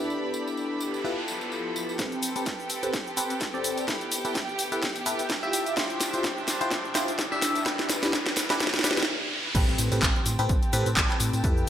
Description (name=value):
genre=piano house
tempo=127 BPM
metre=4/4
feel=swing 56% on 16ths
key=A minor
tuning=A4 = 440 Hz
part: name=dark studio violin section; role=sustained chords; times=0.0-11.7 s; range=G4 to B5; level=-36 LUFS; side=right 2 dB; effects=sidechain pumping, low-pass filter
part: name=barking FM electric piano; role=riff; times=0.0-11.7 s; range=C4 to E5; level=-30 LUFS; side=left 1 dB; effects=phaser, sidechain pumping, low-pass filter, digital delay
part: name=tambourine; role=percussion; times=0.0-11.5 s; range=none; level=-38 LUFS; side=equal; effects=none
part: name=clear studio string section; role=texture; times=0.0-11.7 s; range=F3 to A5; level=-36 LUFS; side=right 1 dB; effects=sidechain pumping
part: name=noise sweep, riser and impact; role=sound effects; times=0.6-11.4 s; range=none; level=-36 LUFS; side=right 1 dB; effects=none
part: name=electronic kick drum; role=drums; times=2.0-11.5 s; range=none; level=-28 LUFS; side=equal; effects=high-pass filter on kick
part: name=house drum kit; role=drums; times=2.0-11.7 s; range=crash cymbal, handclaps, hi-hat, shaker, snare drum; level=-28 LUFS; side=equal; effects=overdrive, gated reverb
part: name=organ-like FM bass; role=bass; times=9.5-11.6 s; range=A1 to A2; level=-28 LUFS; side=equal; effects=sidechain pumping
room=moderate plate reverb, RT60 1.6 s, digital ambience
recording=bright 1980s-style digital production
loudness=-24 LUFS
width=side -10 dB against mid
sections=0.0-2.0 A section; 2.0-9.5 B section; 9.5-11.7 C section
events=noise sweep 0.6-2.0; build-up 2.0-9.5; drum fill 2.0-9.1; riser 2.0-9.5; filter sweep on FM electric piano 2.0-9.5; stop 9.1-9.5; drop 9.5-11.7; impact 9.5-11.4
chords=0.0 Em7; 1.0 G13; 2.0 Am9; 3.9 Fmaj9#11 (rootless); 5.5 Dm11; 7.4 Em7; 9.5 Am9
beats=| 0.10 0.57 1.04 1.52 | 1.99 2.46 2.94 3.41 | 3.88 4.35 4.83 5.30 | 5.77 6.24 6.71 7.19 | 7.66 8.13 8.60 9.08 | 9.55 10.02 10.49 10.97 | 11.44